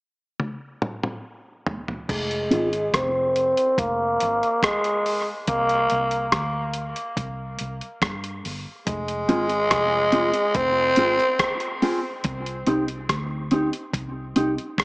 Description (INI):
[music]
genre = dub reggae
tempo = 71 BPM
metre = 4/4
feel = straight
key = F dorian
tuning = A4 = 441 Hz
[part]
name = dusty soul sampler-style drum kit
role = drums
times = 0.4-14.8 s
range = crash cymbal, hi-hat, kick drum, rim click, toms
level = -26 LUFS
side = equal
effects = none
[part]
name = growling tenor saxophone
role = melody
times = 2.1-11.8 s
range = Ab3 to C4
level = -22 LUFS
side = equal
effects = low-pass filter, dub echo
[part]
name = vintage muted fingered electric bass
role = bass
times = 2.1-14.8 s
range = F1 to G2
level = -32 LUFS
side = equal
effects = none
[part]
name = mellow electric guitar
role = accompaniment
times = 2.5-2.7, 9.3-14.5 s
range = C4 to Ab4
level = -24 LUFS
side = equal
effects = low-pass filter, dub echo
[sound]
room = moderate spring reverb, RT60 2.5 s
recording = small speaker sound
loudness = -21 LUFS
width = side -26 dB against mid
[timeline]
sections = 0.0-2.1 A section; 2.1-8.9 B section; 8.9-14.8 C section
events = drum fill 0.4-2.1; filter sweep 2.1-8.9; break 5.5-8.9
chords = 0.0 N.C.; 2.1 Fm; 5.5 C5; 8.9 Fm; 12.2 Cm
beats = 0.40 1.24 | 2.09 2.94 3.78 4.63 | 5.47 6.32 7.17 8.01 | 8.86 9.71 10.55 11.40 | 12.25 13.09 13.94 14.79